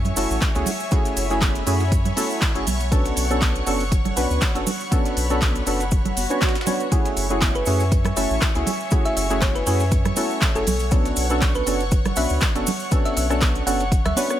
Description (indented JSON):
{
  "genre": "deep house",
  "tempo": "120 BPM",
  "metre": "4/4",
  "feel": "swing 55% on 16ths",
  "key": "unclear",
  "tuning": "A4 = 439 Hz",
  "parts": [
    { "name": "airy breathy pad", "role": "sustained chords", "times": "0.0-14.4 s", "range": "E5 to C#6", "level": "-32 LUFS", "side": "left 1 dB", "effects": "chorus, sidechain pumping" },
    { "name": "round analog bass", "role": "bass", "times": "0.0-14.1 s", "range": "F#1 to F#2", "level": "-25 LUFS", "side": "equal", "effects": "sidechain pumping" },
    { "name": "cabasa", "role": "percussion", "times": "0.0-14.4 s", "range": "none", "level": "-32 LUFS", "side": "right 4 dB", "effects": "none" },
    { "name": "congas", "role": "percussion", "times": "0.0-14.3 s", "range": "none", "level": "-30 LUFS", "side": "right 6 dB", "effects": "none" },
    { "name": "string machine, violins", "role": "texture", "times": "0.0-14.4 s", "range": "C#5 to C#6", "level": "-34 LUFS", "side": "equal", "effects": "ensemble chorus, sidechain pumping" },
    { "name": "deep house drum kit", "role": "drums", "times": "0.1-14.4 s", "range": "handclaps, hi-hat, rim click", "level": "-28 LUFS", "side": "left 1 dB", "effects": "none" },
    { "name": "percussive organ stab", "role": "stabs", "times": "0.2-14.4 s", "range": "A3 to C#5", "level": "-25 LUFS", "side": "equal", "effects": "analog chorus, sidechain pumping, digital delay" },
    { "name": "breakbeat sampler-style drum kit", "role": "drums", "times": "0.2-14.3 s", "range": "hi-hat, snare drum", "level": "-36 LUFS", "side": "right 1 dB", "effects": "none" },
    { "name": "electronic kick drum", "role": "drums", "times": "0.4-14.0 s", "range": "none", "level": "-21 LUFS", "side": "equal", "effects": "none" },
    { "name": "swell", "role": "sound effects", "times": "6.1-6.9 s", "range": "none", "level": "-31 LUFS", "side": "right 4 dB", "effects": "none" },
    { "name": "thumb-piano-like synth pluck", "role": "melody", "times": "7.6-14.4 s", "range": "A4 to F#5", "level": "-28 LUFS", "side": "right 1 dB", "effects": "chorus, digital delay" }
  ],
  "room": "light reverb, digital ambience",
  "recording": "none",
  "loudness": "-18 LUFS",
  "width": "side -11 dB against mid",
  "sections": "0.0-14.4 A section",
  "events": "swell 6.1-6.9",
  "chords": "0.0 F#m9; 2.7 Bm9; 6.9 F#m9; 10.7 Bm9"
}